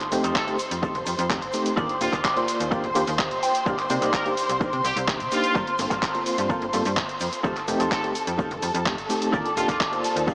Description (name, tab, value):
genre	filtered disco house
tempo	127 BPM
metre	4/4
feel	straight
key	unclear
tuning	A4 = 440 Hz
part	dark symphonic string section	sustained chords	0.0-10.3 s	A4 to C6	-28 LUFS	equal	sidechain pumping
part	electric guitar with an envelope filter	riff	0.0-10.3 s	Eb4 to G5	-30 LUFS	equal	lush chorus, sidechain pumping
part	house drum kit	drums	0.0-10.3 s	handclaps, hi-hat, shaker	-29 LUFS	equal	sidechain pumping on perc, sidechain pumping on hats
part	egg shaker	percussion	0.0-10.3 s	none	-47 LUFS	equal	none
part	overdriven reed electric piano	accompaniment	0.1-10.3 s	A3 to D5	-28 LUFS	equal	fast tremolo, phaser, vintage 12-bit sampler grit, sidechain pumping
part	slap-like FM bass	bass	0.1-10.3 s	Eb1 to C3	-29 LUFS	equal	sidechain pumping
part	muted trumpet section	melody	0.4-9.8 s	F4 to Bb4	-31 LUFS	equal	sidechain pumping, tape echo
part	electronic kick drum	drums	0.4-10.3 s	none	-29 LUFS	equal	none
room	wet huge ambient reverb, RT60 4.0 s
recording	dreamy mix soaked in reverb, small speaker sound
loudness	-21 LUFS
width	side -27 dB against mid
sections	0.0-10.3 A section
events	clean electric guitar fill 3.0-3.7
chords	0.0 F7; 1.8 Ebmaj9; 3.7 Cm9; 5.6 Gm11; 7.4 F7; 9.3 Ebmaj9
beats	0.36 0.83 1.30 | 1.77 2.25 2.72 3.19 | 3.66 4.13 4.61 5.08 | 5.55 6.03 6.50 6.97 | 7.44 7.92 8.39 8.86 | 9.33 9.80 10.28